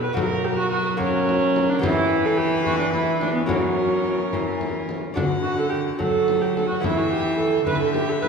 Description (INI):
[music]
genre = classical, renaissance-style consort dance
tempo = 72 BPM (dotted quarters)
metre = 6/8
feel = straight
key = unclear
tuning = A4 = 437 Hz
[part]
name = warm violin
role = melody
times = 0.0-8.3 s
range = A#4 to F#5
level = -30 LUFS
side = left 4 dB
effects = none
[part]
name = rich viola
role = second line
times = 0.0-8.3 s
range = B3 to B4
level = -23 LUFS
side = right 3 dB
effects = none
[part]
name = lute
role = accompaniment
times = 0.0-8.3 s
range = B2 to G4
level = -28 LUFS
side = left 2 dB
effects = none
[part]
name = rich cello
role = bass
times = 0.0-8.3 s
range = B2 to F#3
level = -26 LUFS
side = right 1 dB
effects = none
[part]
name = frame drum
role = percussion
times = 0.2-8.3 s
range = none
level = -29 LUFS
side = left 3 dB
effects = none
[sound]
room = wet cathedral reverb, RT60 4.6 s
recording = heard from further back in the room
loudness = -19 LUFS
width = side -5 dB against mid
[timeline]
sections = 0.0-8.3 A section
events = none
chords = 0.2 F#; 1.8 Em; 3.5 F#; 5.2 D; 6.8 E5